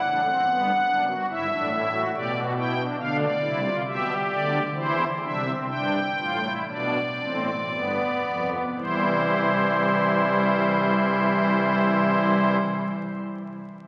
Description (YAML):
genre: classical, baroque-style 3-part fugue for pipe organ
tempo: 53-72 BPM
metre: 3/4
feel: straight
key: C major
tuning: A4 = 440 Hz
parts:
  - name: pipe organ, strings celeste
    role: solo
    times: 0.0-12.6 s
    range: C1 to G5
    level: -24 LUFS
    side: equal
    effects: none
room: wet church reverb, RT60 3.0 s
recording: very old 78 rpm record, vinyl crackle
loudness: -24 LUFS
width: mono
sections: 0.0-8.8 A section; 8.8-12.2 B section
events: slowing down 1.7-8.8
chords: 0.4 G; 2.1 G/B; 3.0 G7; 4.7 C/E; 5.7 Gsus4; 7.7 G7; 8.8 C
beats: | 0.44 1.28 2.12 | 2.98 3.85 4.75 | 5.68 6.67 7.69 | 8.78 9.91 11.04